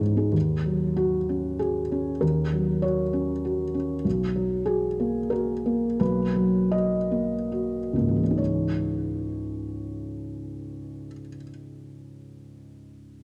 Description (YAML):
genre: neoclassical minimalist piano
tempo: 66-99 BPM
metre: 3/4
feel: rubato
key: C# dorian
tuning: A4 = 440 Hz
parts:
  - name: felt-muted upright piano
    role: solo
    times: 0.0-13.2 s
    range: B1 to D#5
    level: -27 LUFS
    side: equal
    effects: none
room: moderate concert hall reverb, RT60 2.3 s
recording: dark, warm production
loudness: -26 LUFS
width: mono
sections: 0.3-8.4 A section; 8.4-13.2 B section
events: slowing down 3.1-8.4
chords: 0.3 D#m7; 4.1 Bmaj7; 8.4 C#madd9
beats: | 0.35 0.98 1.61 | 2.22 2.83 3.44 | 4.05 4.67 5.32 | 6.00 6.73 7.52 | 8.39 9.28 10.18 | 11.08 11.99 12.89